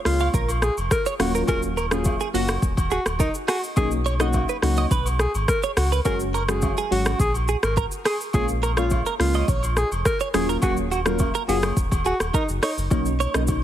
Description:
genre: afrobeats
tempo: 105 BPM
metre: 4/4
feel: straight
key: unclear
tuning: A4 = 440 Hz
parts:
  - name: warm alto saxophone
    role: melody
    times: 0.1-12.8 s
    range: D#4 to A#4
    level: -27 LUFS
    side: equal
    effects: tape echo
  - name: soft electric-piano-like synth keys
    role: accompaniment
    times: 0.1-13.5 s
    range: F#3 to F#4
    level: -27 LUFS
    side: left 1 dB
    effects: chorus, phaser
  - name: sub bass with octave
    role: bass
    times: 0.1-13.6 s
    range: D#1 to C#2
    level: -25 LUFS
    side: equal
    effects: none
  - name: afro-pop drum kit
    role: drums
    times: 0.1-13.6 s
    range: hi-hat, kick drum, rim click, shaker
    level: -25 LUFS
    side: equal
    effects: overdrive
  - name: direct-recorded clean electric guitar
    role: riff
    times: 0.2-13.4 s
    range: F#4 to E#5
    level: -29 LUFS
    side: right 7 dB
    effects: analog chorus, tape echo
  - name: agogo bells and woodblock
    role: percussion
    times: 0.2-13.6 s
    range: none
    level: -33 LUFS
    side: right 2 dB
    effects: none
room: digital ambience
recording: heavily compressed radio sound, multiband compression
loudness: -20 LUFS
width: side -11 dB against mid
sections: 0.0-12.9 A section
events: none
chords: 0.0 A#m7; 1.2 D#m7; 3.8 Bmaj7; 6.1 F#sus2; 8.3 A#m7; 10.3 D#m7; 12.9 Bmaj7

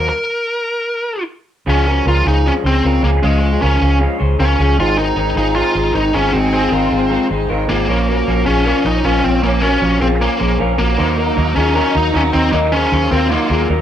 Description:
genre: indie pop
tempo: 155 BPM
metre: 4/4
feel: straight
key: Bb minor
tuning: A4 = 440 Hz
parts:
  - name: bluesy overdriven lead guitar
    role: melody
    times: 0.0-13.7 s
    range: Ab3 to Bb4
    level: -17 LUFS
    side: equal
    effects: distortion
  - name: electric guitar through a small old amp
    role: accompaniment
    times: 0.0-13.8 s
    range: Ab2 to Eb4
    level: -23 LUFS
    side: right 2 dB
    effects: none
  - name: electric guitar through a small old amp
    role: arpeggios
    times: 0.0-13.8 s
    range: C4 to Eb5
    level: -20 LUFS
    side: left 3 dB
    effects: none
  - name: vintage muted fingered electric bass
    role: bass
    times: 0.0-13.8 s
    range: Ab1 to Eb2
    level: -17 LUFS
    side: equal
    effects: none
  - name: dark studio violin section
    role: second line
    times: 4.8-13.8 s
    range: Db4 to Ab4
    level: -24 LUFS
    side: equal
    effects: none
room: moderate studio reverb, RT60 0.5 s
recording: band playing live in one room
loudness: -13 LUFS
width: side -10 dB against mid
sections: 0.0-1.7 A section; 1.7-7.9 B section; 7.9-13.8 C section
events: stop 0.1-1.7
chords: 0.0 Ebm; 1.7 Db; 4.8 Ab; 7.9 Bbm; 11.0 Ebm

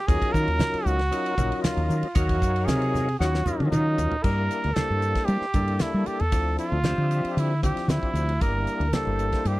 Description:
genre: electric jazz fusion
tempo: 115 BPM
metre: 4/4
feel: straight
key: unclear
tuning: A4 = 440 Hz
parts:
  - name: warm trumpet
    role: melody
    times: 0.0-9.6 s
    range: Eb4 to Bb4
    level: -28 LUFS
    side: right 2 dB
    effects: none
  - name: percussive tonewheel organ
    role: accompaniment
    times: 0.1-9.6 s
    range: F3 to F5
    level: -30 LUFS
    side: left 3 dB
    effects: slow rotary speaker, overdrive, chorus vibrato
  - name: mellow fretless electric bass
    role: bass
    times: 0.1-9.6 s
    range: G1 to G3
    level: -25 LUFS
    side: equal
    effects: none
  - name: damped 70s drum kit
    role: drums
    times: 0.1-9.6 s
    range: crash cymbal, hi-hat, kick drum, ride cymbal, snare drum, toms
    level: -27 LUFS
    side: equal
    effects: none
  - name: congas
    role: percussion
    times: 0.1-9.5 s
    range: none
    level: -32 LUFS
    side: right 2 dB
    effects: none
room: little or no reverb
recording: dry, close 1970s-style studio recording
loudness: -22 LUFS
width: side -18 dB against mid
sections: 0.0-4.2 A section; 4.2-9.6 B section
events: drum fill 3.2-4.2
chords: 0.1 Ebm9; 4.2 Gm69; 6.3 Dm9; 8.4 Gm69

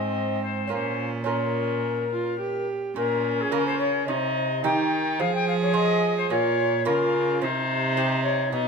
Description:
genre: classical, renaissance-style consort dance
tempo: 108 BPM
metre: 4/4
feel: straight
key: Bb dorian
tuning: A4 = 444 Hz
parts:
  - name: alto recorder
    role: melody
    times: 0.0-8.7 s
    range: Ab4 to G5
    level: -26 LUFS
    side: left 6 dB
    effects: none
  - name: warm viola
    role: second line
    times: 0.0-8.7 s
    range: C4 to Ab4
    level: -29 LUFS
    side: right 4 dB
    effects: none
  - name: lute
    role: accompaniment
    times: 0.0-8.7 s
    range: Ab2 to C5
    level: -30 LUFS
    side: right 5 dB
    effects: none
  - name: rich cello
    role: bass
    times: 0.0-8.7 s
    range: Ab2 to F3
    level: -29 LUFS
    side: right 1 dB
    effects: none
room: wet stone room reverb, RT60 1.2 s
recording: minimal, uncompressed stereo recording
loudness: -22 LUFS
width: side -5 dB against mid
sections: 0.0-3.0 A section; 3.0-8.7 A section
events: none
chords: 0.0 Ab; 0.7 Bbm; 4.1 Cm; 5.2 Fm; 6.3 Bbm; 7.4 Cm

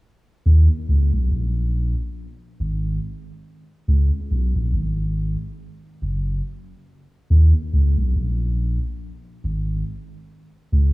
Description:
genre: reggae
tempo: 70 BPM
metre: 4/4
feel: swing 57% on 16ths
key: Eb minor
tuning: A4 = 442 Hz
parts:
  - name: warm sub bass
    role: solo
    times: 0.5-10.9 s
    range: Gb1 to Eb2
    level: -18 LUFS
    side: equal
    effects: analog delay
room: little or no reverb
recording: echo-heavy mix, small room reverb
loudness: -19 LUFS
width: side -22 dB against mid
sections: 0.4-10.9 A section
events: none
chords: none

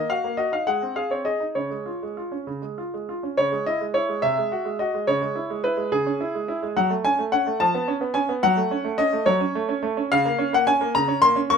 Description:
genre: classical-period piano sonatina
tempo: 71 BPM (dotted quarters)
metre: 6/8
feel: rubato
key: Db major, C# minor from 3.4 s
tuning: A4 = 442 Hz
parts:
  - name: bright baby grand piano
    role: solo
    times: 0.0-11.6 s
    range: B#2 to Db6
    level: -21 LUFS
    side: equal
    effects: none
room: light reverb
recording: none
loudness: -21 LUFS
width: side -6 dB against mid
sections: 0.0-3.4 A section; 3.4-11.6 B section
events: none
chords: 0.0 Ebm; 0.7 Ab; 1.6 Db; 3.4 C#m; 4.2 G#7/B#; 5.1 C#m; 6.8 F#m; 7.6 C#7/E#; 8.4 F#m; 10.1 Bbm/Db

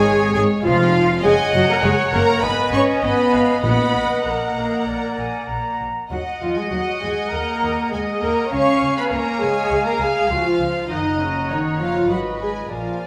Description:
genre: quick classical-period movement for symphony orchestra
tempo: 100 BPM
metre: 4/4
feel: straight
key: Eb minor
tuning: A4 = 438 Hz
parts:
  - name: warm studio violin section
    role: melody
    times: 0.0-13.1 s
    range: Bb4 to Gb5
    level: -28 LUFS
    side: equal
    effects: none
  - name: bright concert flute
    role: second line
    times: 0.0-13.1 s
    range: F4 to Cb6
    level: -29 LUFS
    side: equal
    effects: none
  - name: dark studio violin section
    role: second line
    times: 0.0-13.1 s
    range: Db5 to Db6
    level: -30 LUFS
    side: equal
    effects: none
  - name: warm clarinet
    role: second line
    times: 0.0-13.1 s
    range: F4 to Gb5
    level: -30 LUFS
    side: equal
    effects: none
  - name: dark symphonic viola section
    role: accompaniment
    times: 0.0-13.1 s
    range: Db4 to Db5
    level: -24 LUFS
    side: equal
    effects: none
  - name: dark French horn section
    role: sustained chords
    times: 0.0-13.1 s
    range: Db3 to Db4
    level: -28 LUFS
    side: equal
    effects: none
  - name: rich studio double bass section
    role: bass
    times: 0.0-13.1 s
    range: F1 to Eb2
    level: -30 LUFS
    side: equal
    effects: none
  - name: warm studio cello section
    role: bass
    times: 0.0-13.1 s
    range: Db3 to Db4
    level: -29 LUFS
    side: equal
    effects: none
  - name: timpani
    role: percussion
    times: 3.6-4.5 s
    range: Bb2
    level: -27 LUFS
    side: equal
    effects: none
room: wet recital hall reverb, RT60 1.7 s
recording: none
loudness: -19 LUFS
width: mono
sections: 0.0-13.1 A section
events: none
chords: 0.0 Db; 1.2 Gb; 2.4 Abm; 3.6 Ebm/Bb; 4.9 Bb; 6.1 Ebm; 8.5 Db; 10.9 Gb; 12.1 Abm

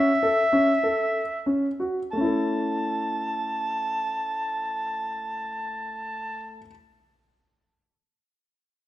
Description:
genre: contemporary instrumental, chamber music in an uneven meter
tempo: free time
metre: none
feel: none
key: A major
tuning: A4 = 440 Hz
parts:
  - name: mellow soprano saxophone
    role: melody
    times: 0.0-6.6 s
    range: E5 to A5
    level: -26 LUFS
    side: equal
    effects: none
  - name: warm concert grand piano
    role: arpeggios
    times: 0.0-6.7 s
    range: A3 to A4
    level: -27 LUFS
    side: equal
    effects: none
room: moderate recital hall reverb, RT60 1.6 s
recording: none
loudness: -24 LUFS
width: side -14 dB against mid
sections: 0.0-2.1 A section; 2.1-6.7 B section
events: slowing down 0.0-2.1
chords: 0.0 A

